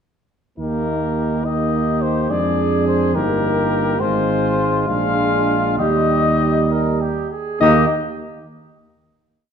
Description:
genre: classical, brass quintet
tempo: 65-71 BPM (dotted quarters)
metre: 6/8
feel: straight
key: Eb major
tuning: A4 = 441 Hz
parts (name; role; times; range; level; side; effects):
- mellow cornet; melody; 0.6-7.9 s; Bb4 to F5; -21 LUFS; left 7 dB; none
- mellow trumpet; second line; 0.6-7.9 s; F4 to Bb4; -25 LUFS; right 5 dB; none
- clear trombone; accompaniment; 0.6-7.9 s; G3 to Bb3; -24 LUFS; right 4 dB; none
- warm French horn; accompaniment; 0.6-7.9 s; D4 to Eb4; -24 LUFS; left 3 dB; none
- dark tuba; bass; 0.6-7.9 s; G1 to F2; -21 LUFS; right 4 dB; none
room: wet recital hall reverb, RT60 1.5 s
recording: dark, warm production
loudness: -16 LUFS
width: side -7 dB against mid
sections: 0.6-7.6 A section; 7.6-9.4 final chord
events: none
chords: 0.6 Eb; 2.3 Ddim/F; 3.2 Eb/G; 4.0 Fm7/Ab; 4.9 Bb7; 5.8 Eb; 7.6 Eb5

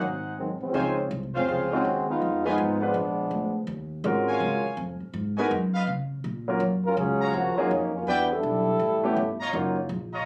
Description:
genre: jazz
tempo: 164 BPM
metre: 4/4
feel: swing 63% on 8ths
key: unclear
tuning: A4 = 440 Hz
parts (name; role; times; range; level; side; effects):
- mellow trumpet section; stabs; 0.0-10.3 s; Eb4 to Bb5; -32 LUFS; equal; none
- upright bass; bass; 0.0-10.2 s; F1 to Db3; -34 LUFS; equal; none
- warm trombone section; second line; 0.4-3.6, 6.9-9.4 s; Db3 to Bb4; -28 LUFS; equal; none
- clear concert grand piano; accompaniment; 0.7-9.8 s; Gb3 to Cb5; -29 LUFS; equal; none
room: light reverb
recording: recorded on a phone in the room, club reverb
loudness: -26 LUFS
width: mono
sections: 0.8-10.3 A section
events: trombone section solo 0.8-10.3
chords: 0.0 Ab7; 0.8 Dbmaj7; 2.2 Fm7b5; 3.0 Bb7b9; 3.7 Ebm11; 5.1 Abm7; 5.9 Db6; 6.6 Gbmaj7; 8.1 Em7; 8.8 A9; 9.5 Cbmaj9#11 (rootless)

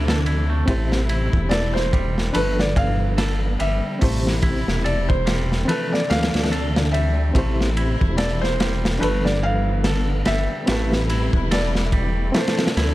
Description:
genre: trip hop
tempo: 72 BPM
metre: 4/4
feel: swing 58% on 16ths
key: A minor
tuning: A4 = 440 Hz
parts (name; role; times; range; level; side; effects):
- barky reed electric piano; accompaniment; 0.0-12.9 s; E3 to C5; -27 LUFS; equal; overdrive, fast tremolo, tape echo
- warm studio string section; sustained chords; 0.0-12.9 s; C3 to E4; -30 LUFS; left 1 dB; none
- clean electric guitar; arpeggios; 0.0-12.9 s; E3 to A4; -31 LUFS; right 3 dB; tape echo
- dark detuned saw bass; bass; 0.0-12.9 s; E1 to D2; -22 LUFS; equal; tube saturation
- crunchy breakbeat drum kit; drums; 0.1-12.9 s; hi-hat, kick drum, ride cymbal, snare drum; -23 LUFS; equal; none
- felt-muted upright piano; melody; 1.5-12.9 s; B4 to F5; -27 LUFS; equal; vintage 12-bit sampler grit, tape echo
room: small room ambience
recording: dark, warm production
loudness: -18 LUFS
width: side -16 dB against mid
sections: 0.0-12.9 A section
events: none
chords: 0.0 Dm7; 0.7 Am7; 2.3 G7; 4.0 Am7; 5.7 Dm7; 7.3 Am7; 9.0 G7; 10.7 Am7; 12.3 Dm7

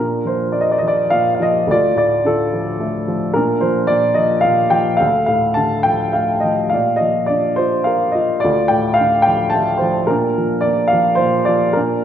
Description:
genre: classical, lyrical solo piano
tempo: 107 BPM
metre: 3/4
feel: rubato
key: Bb major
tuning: A4 = 440 Hz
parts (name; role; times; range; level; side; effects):
- dark upright piano; solo; 0.0-12.0 s; D2 to A5; -14 LUFS; equal; none
room: moderate scoring stage reverb, RT60 1.7 s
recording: recorded in a church or concert hall, nothing above 10.3 kHz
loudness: -14 LUFS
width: side -9 dB against mid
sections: 0.0-12.0 A section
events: none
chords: 0.0 Bb; 1.7 Dm; 3.3 Bb; 5.0 Dm; 6.7 Bb; 8.4 Dm; 10.1 Bb

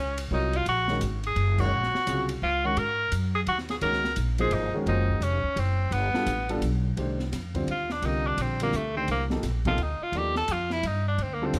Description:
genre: modal jazz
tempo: 171 BPM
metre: 3/4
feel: swing 64% on 8ths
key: Eb dorian, C dorian from 7.0 s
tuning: A4 = 440 Hz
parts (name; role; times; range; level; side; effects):
- clear tenor saxophone; melody; 0.0-11.6 s; A3 to Bb4; -30 LUFS; equal; none
- upright bass; bass; 0.0-11.6 s; F1 to Ab2; -31 LUFS; equal; none
- open jazz drum kit; drums; 0.2-11.6 s; crash cymbal, hi-hat, kick drum, ride cymbal, snare drum; -40 LUFS; equal; none
- warm concert grand piano; accompaniment; 0.3-11.6 s; C3 to D5; -34 LUFS; equal; none
room: light reverb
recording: none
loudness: -27 LUFS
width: mono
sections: 0.0-7.0 A section; 7.0-11.6 B section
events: band accent 1.5; tenor saxophone solo 7.0-11.6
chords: 0.0 Ebm9 (rootless); 2.8 Gbsus2; 5.9 G7; 7.0 Cm11

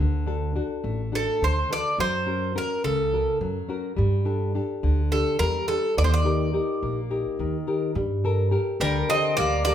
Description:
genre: greek folk, Greek bouzouki band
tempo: 211 BPM (eighths)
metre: 7/8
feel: straight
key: unclear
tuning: A4 = 443 Hz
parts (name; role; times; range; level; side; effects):
- nylon-string guitar; accompaniment; 0.0-9.7 s; C#3 to A#4; -27 LUFS; left 3 dB; none
- upright bass; bass; 0.0-9.7 s; A1 to G2; -25 LUFS; right 1 dB; none
- Greek bouzouki; melody; 1.2-9.7 s; A4 to Eb5; -25 LUFS; right 1 dB; none
- Greek bouzouki; second line; 8.8-9.7 s; G3 to C4; -27 LUFS; equal; none
room: moderate large studio reverb, RT60 0.8 s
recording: band playing live in one room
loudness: -22 LUFS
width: side -10 dB against mid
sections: 0.0-8.0 A section; 8.0-9.7 B section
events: none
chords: 0.0 D; 2.0 F#; 4.0 Gsus2; 6.0 Eb; 8.0 Gmadd9

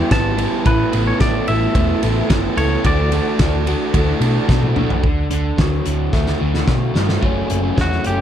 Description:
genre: indie rock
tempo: 110 BPM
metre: 4/4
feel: straight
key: D major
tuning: A4 = 440 Hz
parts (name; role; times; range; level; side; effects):
- twangy electric guitar; melody; 0.0-4.5, 7.8-8.2 s; F#4 to A5; -24 LUFS; equal; slapback echo
- tonewheel organ; sustained chords; 0.0-5.0 s; E3 to A4; -28 LUFS; right 2 dB; none
- overdriven electric guitar; riff; 0.0-8.2 s; F#2 to B4; -20 LUFS; equal; none
- hollow-body short-scale picked electric bass; bass; 0.1-8.2 s; E1 to B2; -20 LUFS; equal; none
- loose indie drum kit; drums; 0.1-8.2 s; hi-hat, kick drum, ride cymbal, snare drum, toms; -20 LUFS; equal; none
room: light reverb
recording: none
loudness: -15 LUFS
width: side -10 dB against mid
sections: 0.0-5.0 A section; 5.0-7.2 B section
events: drum fill 4.5-5.0, 6.1-7.2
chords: 0.0 Em; 0.7 Asus2; 2.8 Dadd9; 5.0 D; 7.2 F#m7

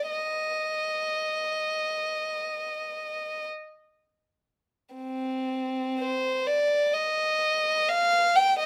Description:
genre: classical, free, expressive piece for unaccompanied violin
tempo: 34-66 BPM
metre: 4/4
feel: rubato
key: unclear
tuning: A4 = 437 Hz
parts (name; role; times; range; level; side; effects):
- dark violin; solo; 0.0-8.7 s; C4 to G5; -27 LUFS; equal; none
room: light reverb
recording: none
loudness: -27 LUFS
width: mono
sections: 0.0-4.9 A section; 4.9-8.7 B section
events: none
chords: none

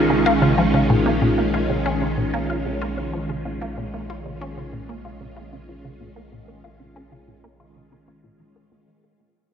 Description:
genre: ambient, sequencer-driven space music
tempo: 94 BPM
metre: 4/4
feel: straight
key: Bb minor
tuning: A4 = 440 Hz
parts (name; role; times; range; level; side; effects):
- phased string machine; sustained chords; 0.0-8.9 s; Eb3 to F4; -22 LUFS; right 1 dB; ensemble chorus, phaser
- round analog bass; bass; 0.0-8.8 s; Bb1; -31 LUFS; equal; transformer saturation
- resonant blip pluck; riff; 0.1-8.8 s; Bb2 to F4; -23 LUFS; left 1 dB; phaser, analog delay
room: wet lush hall reverb, RT60 2.8 s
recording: worn, warbling old tape, cassette tape, warbly pitch drift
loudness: -19 LUFS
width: side -8 dB against mid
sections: 0.0-8.9 A section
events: fade-out 0.0-8.9; filter sweep on synth arpeggio sound 0.0-8.9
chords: 0.0 Bbm7

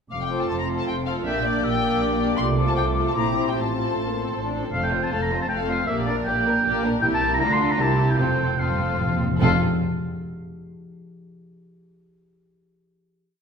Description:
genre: quick classical-period movement for symphony orchestra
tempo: 145-159 BPM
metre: 3/4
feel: straight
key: F major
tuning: A4 = 440 Hz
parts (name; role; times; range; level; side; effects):
- muted studio violin section; melody; 0.1-9.6 s; A4 to C6; -31 LUFS; left 5 dB; none
- silver concert flute; second line; 0.1-4.5 s; C6 to G6; -30 LUFS; left 4 dB; none
- mellow French horn section; sustained chords; 0.1-4.5 s; A3 to F4; -30 LUFS; left 4 dB; none
- muted studio cello section; bass; 0.1-9.6 s; F2 to D3; -29 LUFS; right 2 dB; none
- muted symphonic double bass section; bass; 0.1-9.6 s; F1 to D2; -28 LUFS; right 3 dB; none
- muted chamber violin section; second line; 0.3-9.6 s; F4 to D5; -31 LUFS; left 2 dB; none
- muted chamber viola section; accompaniment; 0.3-9.6 s; A3 to F4; -29 LUFS; right 1 dB; none
- warm oboe; second line; 4.7-9.6 s; D5 to C6; -24 LUFS; equal; none
- timpani; percussion; 4.7-9.6 s; F2 to C3; -28 LUFS; left 1 dB; none
room: wet scoring stage reverb, RT60 1.6 s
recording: minimal, uncompressed stereo recording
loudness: -20 LUFS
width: side -6 dB against mid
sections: 0.1-4.7 A section; 4.7-9.4 A section; 9.4-10.6 final chord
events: timpani fill 8.2-9.4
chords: 0.1 F; 1.2 Gm/Bb; 2.4 F/C; 3.2 C7/Bb; 3.5 F/A; 4.7 F; 5.9 Gm/Bb; 7.0 C7; 7.4 Dm; 7.8 C7; 8.2 F; 9.4 F5

